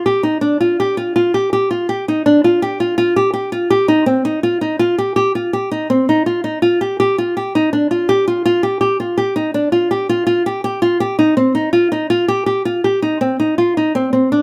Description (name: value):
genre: contemporary instrumental, contemporary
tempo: 164 BPM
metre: 5/4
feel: straight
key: C minor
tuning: A4 = 440 Hz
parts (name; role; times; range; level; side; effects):
- nylon-string guitar; solo; 0.0-14.4 s; C4 to G4; -16 LUFS; equal; none
room: light reverb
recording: none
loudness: -16 LUFS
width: mono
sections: 0.0-13.9 A section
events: none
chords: none